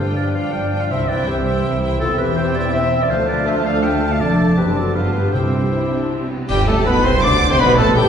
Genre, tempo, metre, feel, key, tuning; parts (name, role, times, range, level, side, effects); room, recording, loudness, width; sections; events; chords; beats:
classical, dramatic, fast romantic movement for symphony orchestra; 163 BPM; 3/4; straight; C major; A4 = 439 Hz
warm symphonic violin section; melody; 0.0-8.1 s; G5 to D6; -25 LUFS; left 2 dB
clear clarinet; second line; 0.0-8.1 s; G4 to G5; -23 LUFS; left 1 dB
mellow cor anglais; second line; 0.0-8.1 s; G4 to F5; -28 LUFS; right 2 dB
mellow hollow silver concert flute; second line; 0.0-8.1 s; D4 to D6; -27 LUFS; left 1 dB
warm chamber violin section; second line; 0.0-8.1 s; D4 to D5; -28 LUFS; left 3 dB
clear bassoon; accompaniment; 0.0-8.1 s; G3 to D4; -27 LUFS; right 2 dB
warm symphonic viola section; accompaniment; 0.0-8.1 s; G3 to E4; -27 LUFS; right 1 dB
dark French horn section; sustained chords; 0.0-8.1 s; E3 to F4; -26 LUFS; left 2 dB
concert harp; arpeggios; 0.0-8.1 s; F2 to D6; -27 LUFS; left 4 dB
dark symphonic cello section; bass; 0.0-8.1 s; C2 to D3; -23 LUFS; right 1 dB
warm symphonic double bass section; bass; 0.0-8.1 s; E1 to D2; -24 LUFS; right 1 dB
timpani; percussion; 0.0-1.4, 5.3-5.9 s; G2 to C3; -27 LUFS; equal
cymbal swell, clash cymbals and concert bass drum; percussion; 4.2-7.2 s; -26 LUFS; equal
warm trombone section; sustained chords; 6.5-8.1 s; G2 to D3; -26 LUFS; right 2 dB
warm trumpet; stabs; 6.5-8.1 s; G4 to D5; -23 LUFS; right 2 dB
warm tuba; bass; 6.5-8.1 s; G1 to D2; -24 LUFS; right 2 dB
wet recital hall reverb, RT60 1.6 s; recorded in a church or concert hall, nothing above 10.9 kHz; -15 LUFS; side -8 dB against mid
0.0-6.5 A section; 6.5-8.1 A section
band accent 6.5-6.9
0.0 G5; 0.9 C; 2.0 C/E; 3.1 Dm; 4.2 Dm/F; 4.6 D7/F#; 5.0 G9; 5.3 C; 6.5 C/G
0.17 0.54 | 0.90 1.27 1.64 | 2.00 2.37 2.73 | 3.10 3.46 3.83 | 4.20 4.57 4.95 | 5.34 5.73 6.11 | 6.49 6.86 7.24 | 7.60 7.97